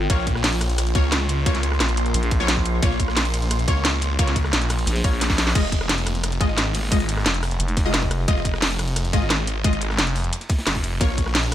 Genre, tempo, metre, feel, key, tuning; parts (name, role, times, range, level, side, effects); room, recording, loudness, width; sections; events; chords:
dark technical drum and bass; 176 BPM; 4/4; straight; F minor; A4 = 440 Hz
deep dark ambient pad; sustained chords; 0.0-5.5 s; Bb3 to C6; -31 LUFS; equal; chorus, built-in reverb, sidechain pumping
growling FM bass; bass; 0.0-0.1, 2.1-2.8, 4.9-5.5, 7.6-8.3 s; F1 to Bb1; -22 LUFS; equal
orchestra-hit-like synth stab; stabs; 0.1-11.5 s; Ab3 to Eb5; -28 LUFS; left 3 dB; built-in reverb, ping-pong delay
snarling distorted saw bass; bass; 0.1-11.5 s; F1 to Db2; -23 LUFS; equal; distortion, tube saturation
crunchy breakbeat drum kit; drums; 0.1-11.5 s; hi-hat, ride cymbal, snare drum; -34 LUFS; equal
drum and bass drum kit; drums; 0.1-11.5 s; crash cymbal, hi-hat, rim click, snare drum; -24 LUFS; equal
electronic kick drum; drums; 0.1-11.2 s; -22 LUFS; equal; overdrive
small room ambience; -19 LUFS; side -12 dB against mid
0.0-5.6 A section; 5.6-11.5 A section
drop 0.0-5.6, 5.6-11.5; drum fill 5.2-5.6
0.1 Bbm; 5.6 Fm7; 11.0 Bbm